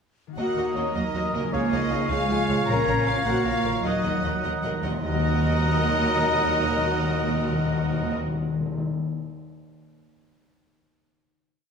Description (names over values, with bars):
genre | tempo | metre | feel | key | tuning
cinematic, heroic adventure film score | 103 BPM (dotted quarters) | 6/8 | straight | Eb minor | A4 = 440 Hz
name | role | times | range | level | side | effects
concert harp | arpeggios | 0.3-9.0 s | Bb2 to Gb5 | -35 LUFS | left 5 dB | none
dark symphonic violin section | melody | 0.4-8.1 s | Bb4 to Bb5 | -31 LUFS | left 2 dB | none
hollow large flute ensemble | second line | 0.4-8.2 s | Ab5 to Bb5 | -33 LUFS | left 2 dB | none
warm clarinet | second line | 0.4-8.1 s | Bb4 to Eb5 | -37 LUFS | equal | none
warm oboe | second line | 0.4-8.1 s | Eb5 to Gb5 | -34 LUFS | right 3 dB | none
warm symphonic violin section | second line | 0.4-8.1 s | Bb4 to Gb5 | -37 LUFS | left 1 dB | none
clear symphonic viola section | accompaniment | 0.4-8.1 s | Eb3 to Bb4 | -33 LUFS | right 2 dB | none
dark trombone section | sustained chords | 0.4-8.2 s | Eb3 to Bb3 | -34 LUFS | right 2 dB | none
mellow French horn section | sustained chords | 0.4-8.2 s | Bb3 to Bb4 | -32 LUFS | left 3 dB | none
clear trumpet | stabs | 0.4-8.1 s | Db5 to Eb5 | -32 LUFS | right 2 dB | none
rich symphonic double bass section | bass | 0.4-8.1 s | Bb1 to Eb2 | -32 LUFS | right 2 dB | none
warm symphonic cello section | bass | 0.4-8.1 s | Eb2 to Db4 | -30 LUFS | right 3 dB | none
timpani | percussion | 0.4-8.8 s | Bb2 to Eb3 | -29 LUFS | left 2 dB | none
room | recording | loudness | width
wet recital hall reverb, RT60 1.4 s | recorded in a church or concert hall | -22 LUFS | side -6 dB against mid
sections
0.4-5.0 theme; 5.0-7.4 final chord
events
timpani fill 3.9-5.0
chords
0.4 Ebm; 1.5 Db; 2.7 Bbm; 3.9 Ebm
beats
| 0.37 0.95 | 1.53 2.11 | 2.68 3.27 | 3.86 4.46 | 5.05 5.63 | 6.22 6.80